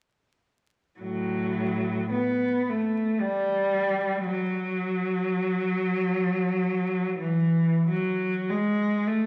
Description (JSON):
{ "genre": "classical, free, expressive piece for unaccompanied cello", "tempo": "36-58 BPM", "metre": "3/4", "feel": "rubato", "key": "unclear", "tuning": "A4 = 440 Hz", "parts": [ { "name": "rich cello", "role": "solo", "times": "1.0-9.3 s", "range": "A2 to B3", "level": "-26 LUFS", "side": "equal", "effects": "none" } ], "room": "wet recital hall reverb, RT60 1.5 s", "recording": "vinyl crackle", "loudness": "-26 LUFS", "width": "mono", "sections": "1.0-7.9 A section; 7.9-9.3 B section", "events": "none", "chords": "none" }